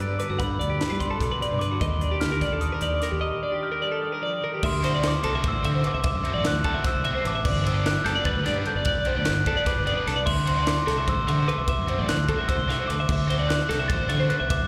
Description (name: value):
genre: math rock and midwest emo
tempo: 297 BPM (eighths)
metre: 7/8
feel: straight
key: unclear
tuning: A4 = 440 Hz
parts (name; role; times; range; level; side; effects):
- glockenspiel with rubber mallets; melody; 0.0-14.7 s; B5 to A6; -31 LUFS; equal; none
- twelve-string electric guitar; accompaniment; 0.0-4.6 s; G2 to B4; -37 LUFS; equal; analog chorus, slapback echo
- twelve-string electric guitar; arpeggios; 0.0-14.7 s; F#4 to F#5; -31 LUFS; equal; slapback echo, digital delay
- fuzz fingered electric bass; bass; 0.0-14.7 s; F#1 to G3; -29 LUFS; equal; overdrive
- crisp fusion drum kit; drums; 0.2-14.6 s; crash cymbal, hi-hat, kick drum, ride cymbal, snare drum; -31 LUFS; equal; none
- biting overdriven guitar; riff; 4.8-14.4 s; D3 to G4; -36 LUFS; equal; slapback echo
room: studio ambience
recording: live gig heard through the venue's PA, recital hall reverb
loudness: -25 LUFS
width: mono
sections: 0.0-4.6 A section; 4.6-14.7 B section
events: break 3.2-4.6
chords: 0.0 Gmaj7; 1.8 Ebmaj7; 4.6 D9; 7.4 Gmaj9; 10.3 D9